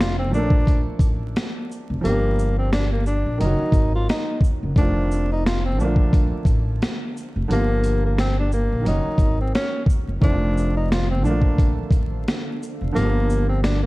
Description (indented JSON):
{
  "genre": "lo-fi hip hop",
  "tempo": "88 BPM",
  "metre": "4/4",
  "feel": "swing 58% on 16ths",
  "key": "Bb major",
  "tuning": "A4 = 440 Hz",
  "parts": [
    { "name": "breathy tenor saxophone", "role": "melody", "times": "0.0-13.9 s", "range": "Bb3 to F4", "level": "-26 LUFS", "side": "left 1 dB", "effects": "tape echo" },
    { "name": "warm upright piano", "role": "accompaniment", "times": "0.0-13.9 s", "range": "D3 to A4", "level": "-28 LUFS", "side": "right 2 dB", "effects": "cassette tape" },
    { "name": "upright bass", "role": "bass", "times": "0.0-13.9 s", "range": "F1 to Bb1", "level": "-22 LUFS", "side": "equal", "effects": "none" },
    { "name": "boom bap sampler-style drum kit", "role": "drums", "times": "0.0-13.8 s", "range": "hi-hat, kick drum, shaker, snare drum", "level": "-21 LUFS", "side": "equal", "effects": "none" },
    { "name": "granular cloud pad", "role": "sustained chords", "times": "11.8-12.9 s", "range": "D4 to F5", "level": "-38 LUFS", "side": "right 1 dB", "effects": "none" }
  ],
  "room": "studio reverb",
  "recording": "dark, warm production, vinyl crackle",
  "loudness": "-18 LUFS",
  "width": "side -20 dB against mid",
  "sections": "0.0-13.9 A section",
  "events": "none",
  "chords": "0.3 Bbmaj7; 2.0 Gm7; 3.4 Gb6; 4.8 F7; 5.8 Bbmaj7; 7.5 Gm7; 8.9 Gb6; 10.2 F7; 11.2 Bbmaj7; 12.9 Gm7"
}